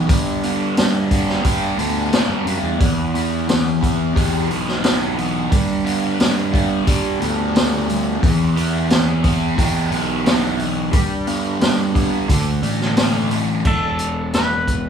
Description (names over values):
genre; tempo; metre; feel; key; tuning
psychedelic rock; 89 BPM; 4/4; straight; E minor; A4 = 438 Hz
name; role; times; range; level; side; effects
fuzz guitar; riff; 0.0-13.6 s; D3 to G4; -20 LUFS; right 1 dB; distortion, phaser
fuzz fingered electric bass; bass; 0.0-14.9 s; E1 to A2; -22 LUFS; equal; overdrive
raw garage drum kit; drums; 0.1-14.8 s; crash cymbal, hi-hat, kick drum, snare drum; -20 LUFS; equal; none
clean lap steel guitar; melody; 13.7-14.9 s; A4 to B4; -22 LUFS; equal; slapback echo
room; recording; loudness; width
little or no reverb; small room ambience; -16 LUFS; side -7 dB against mid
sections
0.0-13.7 A section; 13.7-14.9 B section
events
none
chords
0.1 G; 2.8 Em; 5.5 G; 8.2 Em; 10.9 G; 12.3 Dsus2; 13.7 E5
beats
| 0.09 0.77 1.45 2.13 | 2.80 3.48 4.16 4.83 | 5.51 6.19 6.87 7.54 | 8.22 8.90 9.58 10.26 | 10.93 11.61 12.29 12.97 | 13.65 14.33